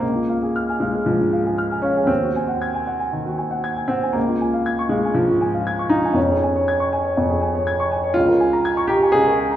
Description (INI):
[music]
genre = classical, romantic character piece for solo piano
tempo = 118 BPM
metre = 4/4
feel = uneven beats, rubato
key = Db major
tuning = A4 = 440 Hz
[part]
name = warm grand piano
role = solo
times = 0.0-9.6 s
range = Db2 to Ab6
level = -17 LUFS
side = equal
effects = none
[sound]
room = wet recital hall reverb, RT60 1.6 s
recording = heard from further back in the room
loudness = -17 LUFS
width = side -12 dB against mid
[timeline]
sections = 0.0-9.6 A section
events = none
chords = 0.0 Db; 2.1 Ab7/Eb; 4.2 Db; 6.2 Db/F; 8.2 Bbm7/Db